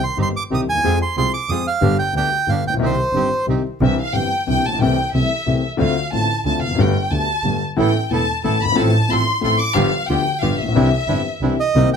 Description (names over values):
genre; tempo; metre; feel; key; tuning
tango; 182 BPM; 3/4; rubato; C minor, C major from 3.8 s; A4 = 437 Hz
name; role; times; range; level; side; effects
bandoneon; melody; 0.0-3.5, 11.6-12.0 s; C5 to Eb6; -20 LUFS; right 4 dB; plate reverb
dark grand piano; accompaniment; 0.2-11.9 s; E1 to A4; -20 LUFS; left 4 dB; none
bandoneon; stabs; 0.2-3.6, 7.8-11.9 s; Bb3 to A4; -27 LUFS; right 8 dB; none
dark double bass; bass; 0.2-11.9 s; E1 to F2; -22 LUFS; right 3 dB; none
warm chamber violin section; second line; 3.8-11.6 s; E5 to D6; -21 LUFS; left 1 dB; none
room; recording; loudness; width
light reverb; none; -16 LUFS; side -7 dB against mid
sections
0.0-3.8 A section; 3.8-11.7 B section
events
violin section solo 3.8-11.7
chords
0.0 Cm; 0.8 Fm; 1.8 G; 2.8 Cm; 3.8 Cadd9; 4.8 Am7/C; 5.8 Dm7; 6.8 Gadd9; 7.8 Asus2; 8.8 F/A; 9.8 G7; 10.8 Cadd9